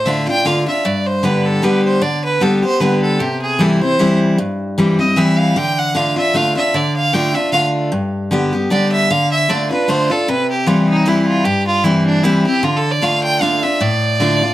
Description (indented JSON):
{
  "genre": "bluegrass",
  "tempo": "153 BPM",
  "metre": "3/4",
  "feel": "swing 55% on 8ths",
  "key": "D dorian",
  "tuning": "A4 = 440 Hz",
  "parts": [
    { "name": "clear fiddle", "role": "melody", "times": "0.0-14.5 s", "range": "D4 to G5", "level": "-17 LUFS", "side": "right 2 dB", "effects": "none" },
    { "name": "picked steel-string acoustic guitar", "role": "accompaniment", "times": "0.0-14.5 s", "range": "G2 to G4", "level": "-15 LUFS", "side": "left 1 dB", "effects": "none" }
  ],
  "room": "moderate studio reverb, RT60 0.5 s",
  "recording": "none",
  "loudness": "-13 LUFS",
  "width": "side -14 dB against mid",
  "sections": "0.0-7.9 A section; 7.9-14.5 B section",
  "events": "none",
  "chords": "0.0 Dm; 0.8 G; 3.2 C; 5.6 Dm; 7.9 G; 9.1 Dm; 10.3 C; 12.6 Dm"
}